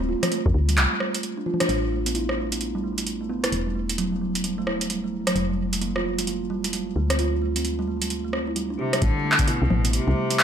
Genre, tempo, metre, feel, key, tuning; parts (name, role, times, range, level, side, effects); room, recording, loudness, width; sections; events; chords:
IDM; 131 BPM; 4/4; swing 62% on 16ths; A minor; A4 = 440 Hz
kalimba; arpeggios; 0.0-10.3 s; F#3 to G4; -27 LUFS; right 3 dB; low-pass filter, ping-pong delay
woody FM bass; bass; 0.0-10.1 s; D1 to F2; -27 LUFS; equal
electro analog drum machine; drums; 0.2-10.4 s; congas, handclaps, hi-hat, rim click; -25 LUFS; equal; overdrive
electronic kick drum; drums; 0.5, 9.0-9.5 s; -24 LUFS; left 1 dB; overdrive
clear cello; melody; 8.8-10.4 s; B2 to D3; -26 LUFS; left 3 dB
little or no reverb; -22 LUFS; side -8 dB against mid
0.0-1.7 A section; 1.7-9.0 B section; 9.0-10.4 C section
break 1.2-1.7; band accent 1.6; filter sweep on kalimba 1.7-9.0
0.0 Dm; 1.7 N.C.; 3.5 Emadd9; 5.4 Fmadd9; 7.0 Dsus4; 9.0 Amadd9